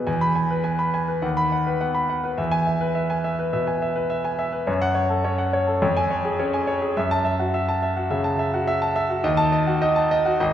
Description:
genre	classical, virtuoso piano study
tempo	105 BPM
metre	4/4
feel	rubato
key	E major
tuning	A4 = 440 Hz
part	clear concert grand piano	solo	0.0-10.5 s	G#1 to B5	-20 LUFS	equal	none
room	wet recital hall reverb, RT60 1.7 s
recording	heard from further back in the room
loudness	-20 LUFS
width	side -10 dB against mid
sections	0.1-10.5 A section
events	none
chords	0.1 E; 1.2 B/D#; 2.4 E; 4.7 F#m; 5.8 C#/E#; 7.0 F#m7; 9.2 D#dim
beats	| 0.07 0.65 1.23 1.81 | 2.39 2.96 3.53 4.11 | 4.68 5.25 5.83 6.39 | 6.96 7.54 8.11 8.67 | 9.24 9.82 10.40

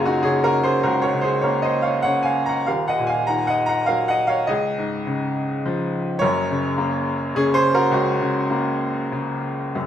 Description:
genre	classical, lyrical solo piano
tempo	92-109 BPM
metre	3/4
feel	rubato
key	Gb lydian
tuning	A4 = 440 Hz
part	bright upright piano	solo	0.0-9.9 s	Eb1 to Bb5	-18 LUFS	equal	none
room	moderate recital hall reverb, RT60 1.5 s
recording	minimal, uncompressed stereo recording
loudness	-18 LUFS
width	side -10 dB against mid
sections	0.0-9.8 A section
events	none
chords	0.0 Gbadd9; 2.7 Ebmadd9; 4.5 Dbadd9; 6.2 Gbadd9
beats	0.24 | 0.83 1.43 2.04 | 2.67 3.30 3.90 | 4.50 5.08 5.64 | 6.21 6.79 7.34 | 7.91 8.50 9.12 | 9.75

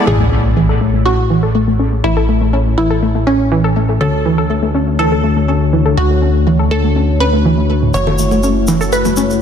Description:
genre	progressive house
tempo	122 BPM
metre	4/4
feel	straight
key	A major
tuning	A4 = 440 Hz
part	chorused polysynth	stabs	0.0-9.4 s	A2 to C#5	-17 LUFS	left 4 dB	cassette tape, dub echo
part	wide unison pluck	melody	0.1-9.4 s	C#4 to C#5	-19 LUFS	right 1 dB	digital delay
part	analog pluck	arpeggios	0.1-9.2 s	A2 to A4	-17 LUFS	right 2 dB	chorus, dub echo
part	plucky analog bass	bass	0.1-9.4 s	F#1 to D2	-17 LUFS	equal	none
part	impact	sound effects	0.1-2.0 s	none	-19 LUFS	right 1 dB	none
part	egg shaker	percussion	7.9-9.4 s	none	-25 LUFS	left 2 dB	none
part	bongos and congas	percussion	8.1-9.1 s	none	-21 LUFS	left 5 dB	none
room	moderate lush hall reverb, RT60 2.0 s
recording	dense, heavily limited modern master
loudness	-11 LUFS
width	side -8 dB against mid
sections	0.1-9.4 A section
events	impact 0.1-2.0; filter sweep on analog polysynth 0.1-9.4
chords	0.1 Amaj7; 4.0 Dmaj7; 7.9 F#m7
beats	| 0.07 0.56 1.06 1.55 | 2.04 2.53 3.02 3.52 | 4.01 4.50 4.99 5.48 | 5.97 6.47 6.96 7.45 | 7.94 8.43 8.93 9.42

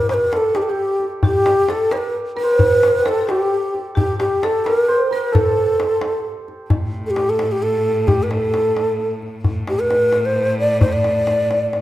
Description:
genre	Persian modal ensemble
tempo	88 BPM (dotted quarters)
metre	6/8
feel	straight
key	A dastgah shur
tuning	A4 = 441 Hz
part	breathy mellow ney	melody	0.0-11.8 s	G4 to D5	-17 LUFS	equal	none
part	santur	second line	0.0-8.2 s	G4 to E5	-26 LUFS	right 4 dB	none
part	tombak	percussion	0.1-11.8 s	none	-21 LUFS	left 1 dB	none
part	buzzing marimba with medium hard mallets	second line	1.2-6.2 s	G4 to Bb4+45c	-27 LUFS	left 1 dB	none
part	clear cello	drone	6.7-11.8 s	A2	-25 LUFS	left 1 dB	none
room	wet recital hall reverb, RT60 1.5 s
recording	recorded in a church or concert hall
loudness	-15 LUFS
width	side -14 dB against mid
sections	0.0-6.7 A section; 6.7-11.8 B section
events	none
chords	none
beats	0.54 | 1.22 1.91 | 2.59 3.28 | 3.96 4.65 | 5.33 6.02 | 6.70 7.39 | 8.08 8.76 | 9.45 10.13 | 10.82 11.50

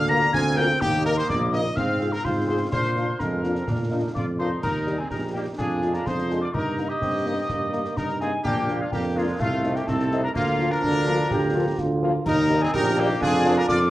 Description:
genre	military-style march for wind band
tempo	126 BPM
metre	2/4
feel	straight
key	Eb major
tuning	A4 = 440 Hz
part	clear trumpet section	melody	0.0-13.8 s	F4 to Bb5	-29 LUFS	equal	none
part	mellow wooden piccolo	second line	0.0-13.9 s	F5 to Bb6	-29 LUFS	left 2 dB	none
part	mellow woodwind section	second line	0.0-13.9 s	Ab3 to F5	-32 LUFS	equal	none
part	mellow trombone section	sustained chords	0.0-13.9 s	F3 to F4	-34 LUFS	right 1 dB	none
part	mellow tuba	bass	0.0-13.9 s	Bb1 to Bb2	-26 LUFS	right 1 dB	none
part	mellow French horn section	accompaniment	0.1-13.5 s	F3 to Bb4	-30 LUFS	left 2 dB	none
part	concert snare drum, concert bass drum and clash cymbals	drums	0.1-13.9 s	none	-32 LUFS	equal	none
part	clear euphonium	second line	5.1-13.8 s	A3 to G4	-29 LUFS	right 2 dB	none
room	moderate large studio reverb, RT60 0.9 s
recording	worn, warbling old tape, cassette tape, warbly pitch drift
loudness	-21 LUFS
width	side -15 dB against mid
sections	0.0-4.6 A section; 4.6-13.9 B section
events	none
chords	0.0 Bb/D; 0.8 Eb5; 1.8 Fm/Ab; 2.7 Bb; 4.6 Eb; 5.6 Ddim/F; 6.5 Eb/G; 8.4 Bb; 9.4 Adim/C; 10.4 Bb/D; 12.3 Eb; 13.2 Bb/F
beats	0.34 | 0.82 1.29 | 1.77 2.25 | 2.72 3.20 | 3.68 4.16 | 4.63 5.11 | 5.59 6.06 | 6.54 7.02 | 7.50 7.97 | 8.45 8.93 | 9.40 9.88 | 10.36 10.83 | 11.31 11.79 | 12.26 12.74 | 13.22 13.69

